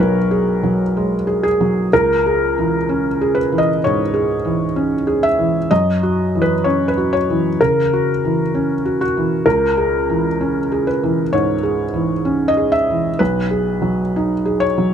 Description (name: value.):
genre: neoclassical minimalist piano.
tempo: 64 BPM.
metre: 4/4.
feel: rubato.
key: C# dorian.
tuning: A4 = 440 Hz.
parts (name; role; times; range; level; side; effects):
felt-muted upright piano; solo; 0.0-14.9 s; B1 to E5; -15 LUFS; equal; none.
room: little or no reverb.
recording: close, detailed microphones.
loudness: -15 LUFS.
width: side -8 dB against mid.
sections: 0.0-14.9 A section.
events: none.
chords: 0.0 G#m7/B; 1.9 C#m; 5.7 F#7; 9.4 C#m; 13.2 G#m7/B.